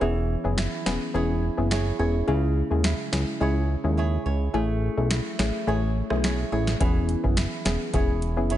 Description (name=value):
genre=dancehall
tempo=106 BPM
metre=4/4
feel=straight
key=E major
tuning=A4 = 441 Hz
part: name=soft round pluck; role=accompaniment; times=0.0-8.5 s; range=G#3 to G#4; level=-27 LUFS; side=left 3 dB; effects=chorus
part: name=flamenco guitar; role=arpeggios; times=0.0-8.6 s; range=C#3 to C#5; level=-32 LUFS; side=right 7 dB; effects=none
part: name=fat analog bass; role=bass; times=0.0-8.6 s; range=E1 to D#2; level=-25 LUFS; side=equal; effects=none
part: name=booming analog drum machine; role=drums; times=0.6-8.6 s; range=finger snaps, hi-hat, kick drum, rim click, snare drum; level=-28 LUFS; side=equal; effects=none
room=digital ambience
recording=nothing above 10.8 kHz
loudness=-22 LUFS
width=side -12 dB against mid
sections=0.0-8.6 A section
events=break 0.0-6.8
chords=0.0 E6; 2.3 C#m; 4.5 Amaj7; 6.8 E6